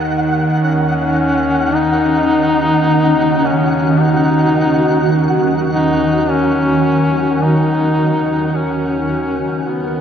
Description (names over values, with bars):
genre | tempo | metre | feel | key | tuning
dark ambient drone | 53 BPM | 4/4 | straight | Eb minor | A4 = 442 Hz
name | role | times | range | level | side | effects
granular cloud pad | sustained chords | 1.5-10.0 s | Eb3 to Bb4 | -18 LUFS | equal | built-in reverb
bowed-like drone | drone | 0.0-10.0 s | Eb2 to Eb3 | -18 LUFS | right 1 dB | built-in reverb
flickering grainy texture | texture | 0.0-10.0 s | Gb5 | -23 LUFS | right 1 dB | built-in reverb
warm duduk | melody | 0.6-10.0 s | Cb4 to Eb4 | -16 LUFS | left 2 dB | diffuse ambient delay
room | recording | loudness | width
wet cathedral reverb, RT60 4.9 s | dark, warm production | -12 LUFS | side -8 dB against mid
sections
0.0-10.0 A section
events
fade-out 5.5-10.0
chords
0.0 Ebm